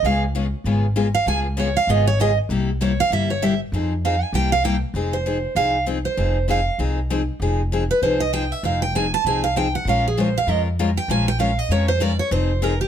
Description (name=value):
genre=acoustic string swing (jazz manouche)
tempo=196 BPM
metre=4/4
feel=swing 58% on 8ths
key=F minor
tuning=A4 = 438 Hz
part: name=picked steel-string acoustic guitar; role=melody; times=0.0-12.9 s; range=G4 to A5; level=-21 LUFS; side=right 4 dB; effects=none
part: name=picked steel-string acoustic guitar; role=accompaniment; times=0.0-12.7 s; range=C3 to Bb4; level=-24 LUFS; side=left 4 dB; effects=none
part: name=upright bass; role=bass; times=0.0-12.8 s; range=F1 to F2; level=-23 LUFS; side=equal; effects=none
room=light reverb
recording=none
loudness=-18 LUFS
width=side -9 dB against mid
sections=0.0-5.0 A section; 5.0-12.9 A section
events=steel-string acoustic guitar solo 0.0-12.9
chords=0.0 Db7; 2.5 C7; 3.7 Fm7; 4.3 C7; 5.0 Fm7; 9.9 Bbm7; 12.3 Fm7